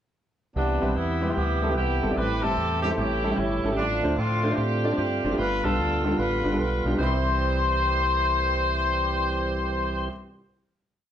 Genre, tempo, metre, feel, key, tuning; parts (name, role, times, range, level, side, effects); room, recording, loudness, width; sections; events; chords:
uptempo gospel; 149 BPM; 4/4; swing 65% on 8ths; C major; A4 = 440 Hz
clear horn section; melody; 0.6-10.1 s; F3 to C5; -26 LUFS; left 1 dB
clear grand piano; accompaniment; 0.6-10.1 s; C2 to B5; -29 LUFS; equal
tonewheel organ; sustained chords; 0.6-10.1 s; C3 to G4; -32 LUFS; right 2 dB; fast rotary speaker, chorus vibrato
deep dub fingered electric bass; bass; 0.6-10.1 s; F#1 to A2; -28 LUFS; equal
wet large studio reverb, RT60 0.8 s; band playing live in one room; -22 LUFS; side -9 dB against mid
0.6-7.0 breakdown; 7.0-10.2 final chord
0.6 Cmaj7; 2.2 Am7; 3.0 A7; 3.8 Dm7/A; 5.4 G7; 7.0 Cmaj7